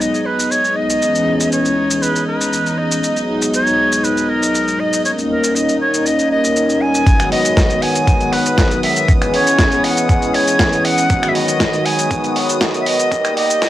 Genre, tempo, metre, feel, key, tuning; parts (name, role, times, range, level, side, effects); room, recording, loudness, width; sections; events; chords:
nu-disco, nu disco; 119 BPM; 4/4; straight; G# minor; A4 = 439 Hz
bright silver concert flute; melody; 0.0-13.7 s; A#4 to G#5; -18 LUFS; equal; cassette tape, tape echo
warm analog pad; accompaniment; 0.0-13.7 s; D#3 to A#4; -17 LUFS; left 1 dB; chorus, cassette tape
warm studio violin section; sustained chords; 0.0-13.7 s; D#4 to D#6; -28 LUFS; equal; sidechain pumping, cassette tape
dusty soul sampler-style drum kit; drums; 0.0-13.7 s; finger snaps, hi-hat, shaker, snare drum; -20 LUFS; equal; overdrive, studio reverb, cassette tape
electronic kick drum; drums; 7.1-13.7 s; -15 LUFS; equal; overdrive, studio reverb, cassette tape
wet booth ambience, RT60 0.2 s; home recording on cassette, high-pass filter; -13 LUFS; side -14 dB against mid
0.0-7.1 A section; 7.1-13.7 B section
filter sweep on analog synth pad 0.0-7.1; build-up 7.1-13.7
0.0 G#m7; 1.0 C#m7; 3.0 G#m7; 5.1 D#7/G; 7.1 G#m7; 9.1 C#m7; 11.1 G#m7; 13.1 D#